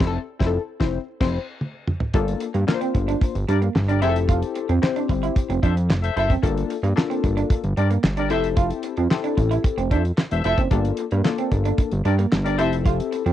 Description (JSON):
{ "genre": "early-eighties boogie funk", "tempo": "112 BPM", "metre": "4/4", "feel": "straight", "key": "G dorian", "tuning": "A4 = 440 Hz", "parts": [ { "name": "funky polysynth comp", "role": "accompaniment", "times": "0.0-13.2 s", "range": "Bb3 to C5", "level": "-26 LUFS", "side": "left 9 dB", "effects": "chorus, plate reverb" }, { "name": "fat analog bass", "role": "bass", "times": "0.0-13.3 s", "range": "E1 to G2", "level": "-22 LUFS", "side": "equal", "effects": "none" }, { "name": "damped 70s drum kit", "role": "drums", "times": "0.0-13.3 s", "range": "crash cymbal, handclaps, hi-hat, kick drum, snare drum, toms", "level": "-21 LUFS", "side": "equal", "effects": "cassette tape" }, { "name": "electric guitar through a small old amp", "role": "riff", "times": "2.1-13.3 s", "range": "G3 to F4", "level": "-26 LUFS", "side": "right 10 dB", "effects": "lush chorus" }, { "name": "mellow horn section", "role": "second line", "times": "3.5-12.8 s", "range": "G4 to E5", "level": "-27 LUFS", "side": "left 8 dB", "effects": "none" } ], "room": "light reverb", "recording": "home recording on cassette", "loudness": "-19 LUFS", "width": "side -12 dB against mid", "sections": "0.0-2.1 A section; 2.1-13.3 B section", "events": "band accent 0.0-2.1; drum fill 1.6-2.1", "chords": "0.0 Fmaj7; 2.1 Gm7; 4.0 Fmaj7; 6.4 Gm7; 8.3 Fmaj7; 10.7 Gm7; 12.6 Fmaj7", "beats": "| 0.00 0.54 1.07 1.61 | 2.14 2.68 3.21 3.75 | 4.29 4.82 5.36 5.89 | 6.43 6.96 7.50 8.04 | 8.57 9.11 9.64 10.18 | 10.71 11.25 11.79 12.32 | 12.86" }